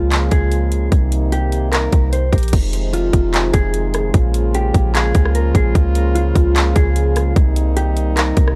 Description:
hip hop, atmospheric cloud-rap; 149 BPM; 4/4; half-time; F minor; A4 = 440 Hz
mellow electric guitar; melody; 0.0-8.5 s; F4 to C5; -25 LUFS; equal; analog delay
mellow French horn section; sustained chords; 0.0-8.6 s; C3 to F4; -25 LUFS; equal; sidechain pumping
clean 808-style bass; bass; 0.0-8.6 s; F1 to Db2; -19 LUFS; equal
trap drum kit; drums; 0.1-8.6 s; crash cymbal, handclaps, hi-hat, kick drum, rim click; -19 LUFS; equal
little or no reverb; dry, gritty hardware recording; -16 LUFS; mono
0.0-2.5 A section; 2.5-8.6 B section
0.0 Db6; 0.9 Cm7; 2.5 Fm7; 4.1 Bbm7; 5.8 Db6; 7.4 Cm7
0.11 0.52 | 0.92 1.32 1.72 2.13 | 2.53 2.93 3.33 3.74 | 4.14 4.54 4.95 5.35 | 5.75 6.15 6.56 6.96 | 7.36 7.76 8.17

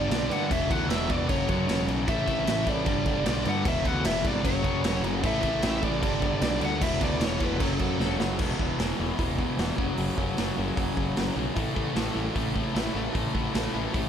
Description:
punk rock; 152 BPM; 4/4; straight; A major; A4 = 440 Hz
bluesy overdriven lead guitar; melody; 0.0-8.2 s; A4 to F#5; -31 LUFS; left 1 dB; distortion, digital delay
cranked stack guitar; riff; 0.0-14.1 s; E2 to A3; -31 LUFS; left 12 dB; overdrive
crunchy overdriven guitar; riff; 0.0-14.1 s; E2 to A3; -31 LUFS; right 12 dB
growling picked electric bass; bass; 0.0-14.1 s; E1 to G2; -32 LUFS; equal; overdrive
raw garage drum kit; drums; 0.1-14.0 s; crash cymbal, hi-hat, kick drum, snare drum; -29 LUFS; equal
light reverb; -24 LUFS; side -8 dB against mid
0.0-8.4 A section; 8.4-14.1 B section
drum fill 8.0-8.4
0.0 G; 0.5 E5; 1.3 F#5; 2.1 A5; 2.9 G; 3.7 E; 4.4 F#5; 5.2 A5; 6.0 G; 6.8 E5; 7.6 F#m; 8.4 E5; 9.8 F#5; 11.6 A5
0.11 | 0.50 0.90 1.29 1.69 | 2.08 2.47 2.87 3.26 | 3.66 4.05 4.45 4.84 | 5.24 5.63 6.03 6.42 | 6.82 7.21 7.61 8.00 | 8.40 8.79 9.19 9.59 | 9.98 10.38 10.77 11.17 | 11.56 11.96 12.36 12.75 | 13.15 13.54 13.94

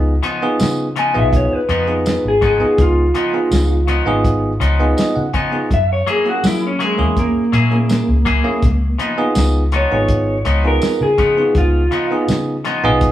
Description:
straight-eighth soul blues; 82 BPM; 4/4; straight; Db mixolydian; A4 = 440 Hz
bell-like tine electric piano; accompaniment; 0.0-13.1 s; Bb3 to Ab5; -19 LUFS; right 2 dB
vintage muted fingered electric bass; bass; 0.0-13.1 s; Ab1 to Gb3; -18 LUFS; equal
clean electric guitar; stabs; 0.2-12.9 s; Db3 to Ab4; -23 LUFS; left 4 dB; spring reverb
cloth-damped thuddy drum kit; drums; 0.2-13.1 s; hi-hat, kick drum, snare drum, tambourine; -19 LUFS; equal
electric guitar through a small old amp; melody; 1.0-12.3 s; Ab3 to Ab5; -18 LUFS; equal
light reverb; band playing live in one room, small room ambience; -13 LUFS; side -12 dB against mid
0.0-13.1 A section
clean electric guitar solo 0.0-13.1; tine electric piano fill 4.2-5.7
0.0 Db9; 5.7 Gb9; 8.6 Db9
0.59 1.32 2.05 | 2.78 3.51 4.24 4.97 | 5.70 6.43 7.16 7.89 | 8.62 9.36 10.09 10.82 | 11.55 12.28 13.01

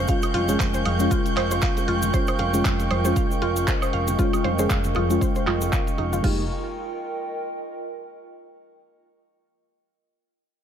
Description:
deep house; 117 BPM; 4/4; swing 57% on 16ths; F minor; A4 = 440 Hz
airy breathy pad; sustained chords; 0.0-6.5 s; Ab3 to Db6; -31 LUFS; right 4 dB; chorus, sidechain pumping
mellow FM electric piano; stabs; 0.0-6.4 s; Ab3 to Ab4; -26 LUFS; left 1 dB; chorus, cassette tape, sidechain pumping, low-pass filter, digital delay
fingered electric bass; bass; 0.0-6.5 s; F1 to F2; -27 LUFS; equal; sidechain pumping, low-pass filter
muted symphonic violin section; texture; 0.0-6.3 s; G6; -35 LUFS; equal; sidechain pumping
warbly tape-like pad; texture; 0.0-8.3 s; F4 to G5; -31 LUFS; right 2 dB; chorus, built-in reverb, sidechain pumping
mallet-like synth pluck; arpeggios; 0.1-6.5 s; Eb4 to F5; -30 LUFS; right 1 dB; chorus, phaser, cassette tape, sidechain pumping, dub echo
deep house drum kit; drums; 0.1-6.4 s; crash cymbal, handclaps, hi-hat, woodblock; -31 LUFS; right 2 dB; low-pass filter on hats, studio reverb, low-pass filter on perc, low-pass filter on snare, low-pass filter on cymbals
electronic kick drum; drums; 0.1-6.4 s; -26 LUFS; equal; studio reverb
cabasa; percussion; 0.1-6.2 s; -36 LUFS; left 2 dB
bongos and congas; percussion; 0.2-6.2 s; -36 LUFS; right 1 dB
light reverb; -20 LUFS; side -9 dB against mid
0.0-6.2 A section; 6.2-8.3 B section
filter sweep on FM electric piano 0.0-6.2; filter sweep on synth arpeggio sound 0.0-6.2
0.0 Db/F; 6.2 Fm11
| 0.09 0.60 1.11 1.62 | 2.14 2.65 3.16 3.67 | 4.19 4.70 5.21 5.73 | 6.24 6.75 7.26 7.78

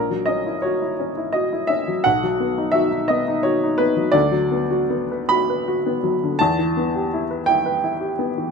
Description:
classical, romantic nocturne for solo piano; 50-59 BPM (dotted quarters); 6/8; rubato; B major, B minor from 4.1 s; A4 = 439 Hz
warm upright piano; solo; 0.0-8.5 s; A#1 to B5; -18 LUFS; equal
moderate studio reverb, RT60 0.6 s; minimal, uncompressed stereo recording; -18 LUFS; side -5 dB against mid
0.0-8.5 A section
0.0 F#7/A#; 2.1 B; 4.1 Bm/D; 6.4 Em
0.98 | 2.06 3.12 | 4.15 5.30 | 6.40 7.47

